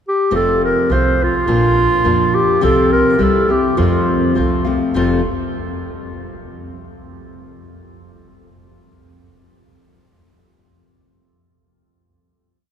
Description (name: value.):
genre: mexican folk, mariachi.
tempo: 103 BPM.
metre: 2/4.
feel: straight.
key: F major.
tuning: A4 = 440 Hz.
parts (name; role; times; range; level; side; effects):
mellow clarinet; melody; 0.1-5.2 s; F4 to C5; -17 LUFS; right 1 dB; none.
nylon-string guitar; accompaniment; 0.3-5.2 s; F2 to G4; -18 LUFS; left 2 dB; none.
upright bass; bass; 0.3-5.2 s; F1 to F2; -21 LUFS; right 1 dB; none.
room: wet cathedral reverb, RT60 6.6 s.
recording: recorded in a church or concert hall.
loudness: -13 LUFS.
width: side -8 dB against mid.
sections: 0.0-0.3 pickup bar; 0.3-5.0 A section; 5.0-6.1 final chord.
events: none.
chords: 0.3 F; 1.5 Bb; 2.6 Csus4; 3.2 C; 3.8 F.